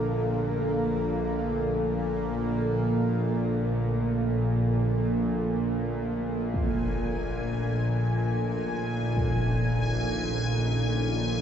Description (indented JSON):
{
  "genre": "dark ambient drone",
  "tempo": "free time",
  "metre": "none",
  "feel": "none",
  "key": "unclear",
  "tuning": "A4 = 440 Hz",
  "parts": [
    { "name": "deep dark ambient pad", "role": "sustained chords", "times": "0.0-11.4 s", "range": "Bb2 to A4", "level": "-30 LUFS", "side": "right 2 dB", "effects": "chorus, built-in reverb" },
    { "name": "quartz singing bowl", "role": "arpeggios", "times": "0.0-7.0 s", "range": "D3 to A4", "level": "-37 LUFS", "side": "left 1 dB", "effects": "none" },
    { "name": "bowed-like drone", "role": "drone", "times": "0.0-11.4 s", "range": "Bb1 to Bb2", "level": "-27 LUFS", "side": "equal", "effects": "built-in reverb" },
    { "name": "bubbling stepped-filter texture", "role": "texture", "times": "0.0-11.4 s", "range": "Bb3 to Ab5", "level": "-36 LUFS", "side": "left 1 dB", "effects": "chorus, built-in reverb, shimmer reverb" },
    { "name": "impact", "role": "percussion", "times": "6.5-9.4 s", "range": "none", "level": "-35 LUFS", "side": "equal", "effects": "low-pass filter on sfx" }
  ],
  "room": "wet cathedral reverb, RT60 5.7 s",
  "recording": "in a vast, echoing space, nothing above 7.8 kHz",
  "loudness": "-25 LUFS",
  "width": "side -8 dB against mid",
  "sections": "0.0-11.4 A section",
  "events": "none",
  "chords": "0.0 Bb; 6.5 A/Bb",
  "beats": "free time"
}